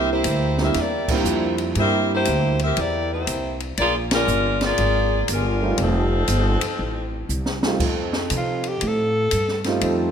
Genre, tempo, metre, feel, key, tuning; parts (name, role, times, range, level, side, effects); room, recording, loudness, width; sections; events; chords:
jazz, big band swing; 119 BPM; 4/4; swing 66% on 8ths; A4 = 438 Hz
warm saxophone section; melody; 0.0-7.3 s; F3 to E5; -22 LUFS; left 1 dB
warm grand piano; accompaniment; 0.0-2.5, 5.6-10.1 s; G3 to F4; -25 LUFS; right 3 dB
upright bass; bass; 0.0-10.1 s; F1 to C3; -24 LUFS; equal
open jazz drum kit; drums; 0.2-10.0 s; crash cymbal, hi-hat, kick drum, ride cymbal, snare drum; -27 LUFS; equal
clear trombone section; sustained chords; 7.8-10.1 s; F3 to A4; -29 LUFS; equal
breathy alto saxophone; melody; 8.4-9.7 s; F4 to A4; -23 LUFS; right 1 dB
moderate concert hall reverb, RT60 2.3 s; minimal, uncompressed stereo recording; -19 LUFS; side -8 dB against mid
0.0-7.8 A section; 7.8-10.1 B section
band accent 1.0, 4.0; drum fill 7.3-7.8; alto saxophone solo 7.8-10.1
0.0 C7; 3.8 Bb7; 5.8 F7